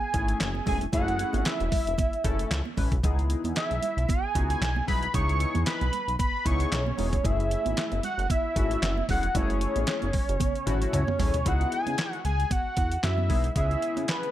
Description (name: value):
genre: early-eighties boogie funk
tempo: 114 BPM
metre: 4/4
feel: swing 56% on 16ths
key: C# minor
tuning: A4 = 440 Hz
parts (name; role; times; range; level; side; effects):
- fat analog lead; melody; 0.0-14.3 s; B4 to C#6; -29 LUFS; right 1 dB; chorus, phaser, slapback echo
- chorused polysynth; accompaniment; 0.1-14.3 s; A3 to B4; -33 LUFS; left 3 dB; none
- chorused synth bass; bass; 0.1-14.1 s; E1 to C#3; -28 LUFS; equal; none
- detuned 8-bit digital drum machine; drums; 0.1-14.3 s; handclaps, hi-hat, kick drum, snare drum, toms; -29 LUFS; equal; gated reverb
- congas; percussion; 0.5-14.2 s; none; -38 LUFS; right 10 dB; none
room: digital ambience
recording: none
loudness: -24 LUFS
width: side -13 dB against mid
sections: 0.0-11.5 A section; 11.5-14.3 B section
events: drum fill 10.4-11.5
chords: 0.0 F#m9; 3.0 C#m9; 7.2 F#m9; 11.5 C#m9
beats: 0.40 | 0.93 1.46 1.98 2.51 | 3.03 3.56 4.09 4.61 | 5.14 5.67 6.19 6.72 | 7.25 7.77 8.30 8.82 | 9.35 9.88 10.40 10.93 | 11.46 11.98 12.51 13.03 | 13.56 14.09